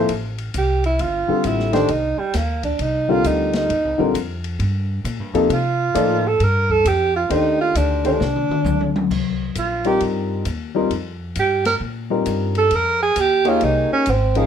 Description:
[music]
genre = modal jazz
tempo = 133 BPM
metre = 4/4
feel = swing 65% on 8ths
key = F minor from 9.1 s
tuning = A4 = 436 Hz
[part]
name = breathy tenor saxophone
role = melody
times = 0.0-14.5 s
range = G3 to Bb4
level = -19 LUFS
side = right 4 dB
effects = none
[part]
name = warm baby grand piano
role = accompaniment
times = 0.0-14.5 s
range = C3 to D5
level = -20 LUFS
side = left 4 dB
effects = none
[part]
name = upright bass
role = bass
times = 0.0-14.5 s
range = G1 to C3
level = -24 LUFS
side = equal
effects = none
[part]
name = open jazz drum kit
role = drums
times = 0.1-14.4 s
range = crash cymbal, hi-hat, kick drum, ride cymbal, snare drum, toms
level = -29 LUFS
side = left 5 dB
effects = none
[sound]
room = moderate studio reverb, RT60 0.7 s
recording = none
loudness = -17 LUFS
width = side -8 dB against mid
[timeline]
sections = 0.0-9.1 A section; 9.1-14.5 A section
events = tenor saxophone solo 0.0-14.5; drum fill 8.2-9.1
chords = 0.0 Dm11; 1.9 Cm11; 9.1 F9sus4

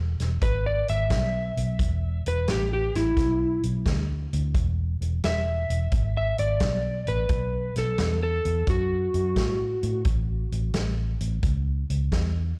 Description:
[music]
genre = electric blues shuffle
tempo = 87 BPM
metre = 4/4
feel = swing 68% on 8ths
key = E mixolydian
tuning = A4 = 440 Hz
[part]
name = vintage muted fingered electric bass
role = bass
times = 0.0-12.5 s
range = E1 to A2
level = -28 LUFS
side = equal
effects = none
[part]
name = vintage drum kit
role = drums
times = 0.2-12.3 s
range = hi-hat, kick drum, snare drum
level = -30 LUFS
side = equal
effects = none
[part]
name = electric slide guitar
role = melody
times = 0.4-10.0 s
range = E4 to E5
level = -30 LUFS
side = equal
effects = none
[sound]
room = small room ambience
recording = live gig heard through the venue's PA, club reverb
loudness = -26 LUFS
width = mono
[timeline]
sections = 0.0-12.6 A section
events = none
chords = 0.0 E; 7.3 B5; 10.1 A

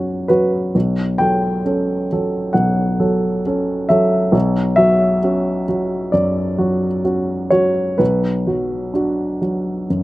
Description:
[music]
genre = neoclassical minimalist piano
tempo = 62-67 BPM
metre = 4/4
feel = rubato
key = B minor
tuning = A4 = 440 Hz
[part]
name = warm grand piano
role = solo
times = 0.0-10.0 s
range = B1 to G5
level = -15 LUFS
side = equal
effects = slapback echo
[sound]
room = little or no reverb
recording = recorded outdoors, with no room sound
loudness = -15 LUFS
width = side -17 dB against mid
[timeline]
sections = 0.0-10.0 A section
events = none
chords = 0.0 Bmadd9; 0.7 F#m/B; 4.3 Bmadd9; 8.0 Bm

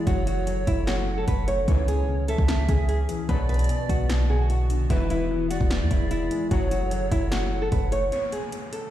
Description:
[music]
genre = hip hop, trap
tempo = 149 BPM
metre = 4/4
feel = half-time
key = F# minor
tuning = A4 = 440 Hz
[part]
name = nylon-string guitar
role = melody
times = 0.0-8.9 s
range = E4 to C#5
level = -29 LUFS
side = equal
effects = low-pass filter
[part]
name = breathy reedy pan flute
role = second line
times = 0.0-8.1 s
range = B4 to F#5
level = -34 LUFS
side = right 5 dB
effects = ping-pong delay
[part]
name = dark baby grand piano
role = accompaniment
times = 0.0-8.1 s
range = B2 to A3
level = -32 LUFS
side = left 5 dB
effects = low-pass filter
[part]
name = warbly tape-like pad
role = sustained chords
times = 0.0-8.1 s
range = D3 to A4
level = -36 LUFS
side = right 2 dB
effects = chorus, built-in reverb, phaser
[part]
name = clean 808-style bass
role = bass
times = 0.1-8.1 s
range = E1 to E2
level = -25 LUFS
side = equal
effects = none
[part]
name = deep house drum kit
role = drums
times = 0.1-8.8 s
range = hi-hat, kick drum, snare drum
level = -27 LUFS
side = equal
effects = overdrive
[part]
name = mellow brass ensemble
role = stabs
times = 1.7-6.9 s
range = B1 to F#3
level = -39 LUFS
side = left 8 dB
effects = ping-pong delay
[part]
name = downlifter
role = sound effects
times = 8.1-8.9 s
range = none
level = -36 LUFS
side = left 1 dB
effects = none
[sound]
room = small room ambience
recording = played on a big sound system in a bare room, stone room reverb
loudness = -22 LUFS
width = side -12 dB against mid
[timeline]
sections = 0.0-8.1 A section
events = break 8.1-8.9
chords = 0.1 F#m; 1.7 C#m; 3.3 Bm; 4.9 E; 6.5 F#m; 8.1 N.C.

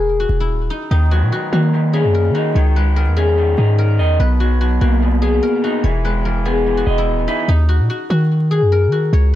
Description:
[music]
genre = hip hop, trap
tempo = 146 BPM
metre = 4/4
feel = half-time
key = Eb phrygian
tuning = A4 = 439 Hz
[part]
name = guzheng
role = melody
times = 0.0-9.4 s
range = Eb4 to Db5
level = -20 LUFS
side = left 4 dB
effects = low-pass filter, ping-pong delay
[part]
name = hard-hitting 808-style bass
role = bass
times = 0.0-9.4 s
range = Eb1 to Eb3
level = -15 LUFS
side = equal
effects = none
[part]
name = electric guitar through a small old amp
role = accompaniment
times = 0.9-7.5 s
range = B2 to Eb5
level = -20 LUFS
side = right 1 dB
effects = low-pass filter
[sound]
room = light reverb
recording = dark, warm production, vinyl crackle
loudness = -14 LUFS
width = side -13 dB against mid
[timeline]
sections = 0.0-7.5 A section; 7.5-9.4 B section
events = none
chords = 0.0 Gb13; 0.9 Ebm7; 2.6 Dbsus2; 4.2 Bmaj7; 5.8 Emaj7; 7.5 Ebm

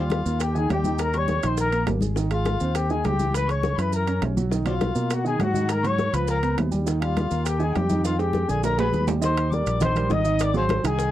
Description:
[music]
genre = Afro-Cuban jazz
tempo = 204 BPM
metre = 4/4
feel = straight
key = Eb major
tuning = A4 = 442 Hz
[part]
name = dark trumpet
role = melody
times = 0.0-11.1 s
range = E#4 to Eb5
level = -27 LUFS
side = left 2 dB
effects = none
[part]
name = overdriven harmonica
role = second line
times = 0.0-11.1 s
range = C5 to Eb6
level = -33 LUFS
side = left 9 dB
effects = none
[part]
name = warm grand piano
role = accompaniment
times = 0.0-11.1 s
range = D3 to Eb5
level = -28 LUFS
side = right 5 dB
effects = none
[part]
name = fingered electric bass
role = bass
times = 0.0-11.1 s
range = Ab1 to B2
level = -25 LUFS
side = equal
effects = none
[part]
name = bongos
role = percussion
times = 0.1-11.1 s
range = none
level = -34 LUFS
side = left 8 dB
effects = none
[part]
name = congas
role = percussion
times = 0.1-11.1 s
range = none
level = -30 LUFS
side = left 1 dB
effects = none
[part]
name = maracas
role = percussion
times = 0.1-11.1 s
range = none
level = -41 LUFS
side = right 14 dB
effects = none
[part]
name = timbales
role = percussion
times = 0.1-11.0 s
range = none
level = -32 LUFS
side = right 7 dB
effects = none
[sound]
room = little or no reverb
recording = dry, close 1970s-style studio recording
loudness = -21 LUFS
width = side -13 dB against mid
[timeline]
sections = 0.0-9.2 A section; 9.2-11.1 B section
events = drum fill 3.9-4.5, 8.1-9.2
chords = 0.0 Ebadd9; 1.0 Eb7; 2.2 Ab6; 3.3 Dbmadd11; 3.9 Gb7; 4.5 Bmaj7#11; 5.7 Ab5; 6.3 Db9; 6.9 Ebadd9; 8.1 Fm7; 8.6 Bb7b9; 9.2 Eb6; 10.4 Ab7

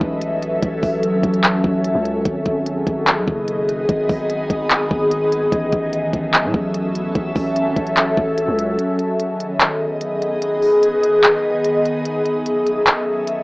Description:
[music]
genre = hip hop, trap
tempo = 147 BPM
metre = 4/4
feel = half-time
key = G# phrygian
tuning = A4 = 441 Hz
[part]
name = ethereal airy pad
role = sustained chords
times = 0.0-13.4 s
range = D#3 to E5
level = -18 LUFS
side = equal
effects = ensemble chorus, built-in reverb, phaser
[part]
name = long sustained 808-style bass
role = bass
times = 0.0-8.8 s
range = F#1 to A2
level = -25 LUFS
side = equal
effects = none
[part]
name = trap drum kit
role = drums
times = 0.0-13.4 s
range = handclaps, hi-hat, kick drum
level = -18 LUFS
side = equal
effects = cassette tape
[sound]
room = wet booth ambience, RT60 0.2 s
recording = home recording on cassette, small speaker sound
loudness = -16 LUFS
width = side -24 dB against mid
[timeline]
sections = 0.0-13.4 A section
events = kick muted 8.8-13.4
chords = 0.0 A6; 2.3 G#m; 5.5 A6; 8.8 G#m; 12.1 A6

